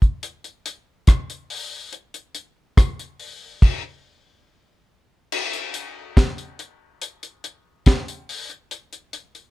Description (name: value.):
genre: reggae.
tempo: 71 BPM.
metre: 4/4.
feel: straight.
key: none.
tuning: none.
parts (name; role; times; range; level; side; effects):
deep reggae drum kit; drums; 0.0-9.5 s; crash cymbal, hi-hat, kick drum, rim click, snare drum; -18 LUFS; equal; none.
room: little or no reverb.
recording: none.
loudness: -20 LUFS.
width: side -19 dB against mid.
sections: 0.0-5.3 A section; 5.3-9.5 B section.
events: none.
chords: none.